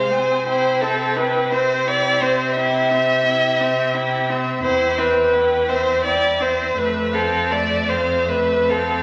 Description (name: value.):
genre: classical, slow romantic movement for string quartet.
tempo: 46-59 BPM (dotted quarters).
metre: 12/8.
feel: rubato.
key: C major.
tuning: A4 = 435 Hz.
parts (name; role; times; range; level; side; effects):
rich violin; melody; 0.0-9.0 s; E5 to Ab5; -30 LUFS; equal; none.
rich violin; second line; 0.0-9.0 s; A4 to E5; -20 LUFS; equal; none.
clear viola; accompaniment; 0.0-9.0 s; Ab3 to E4; -27 LUFS; equal; none.
clear cello; bass; 0.0-9.0 s; E2 to C3; -29 LUFS; equal; none.
room: wet recital hall reverb, RT60 1.4 s.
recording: none.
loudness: -19 LUFS.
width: mono.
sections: 0.0-9.0 A section.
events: none.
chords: 0.5 C; 4.6 C/E; 6.8 Fmaj7.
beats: | 0.47 1.52 2.57 3.61 | 4.64 5.70 6.77 7.90.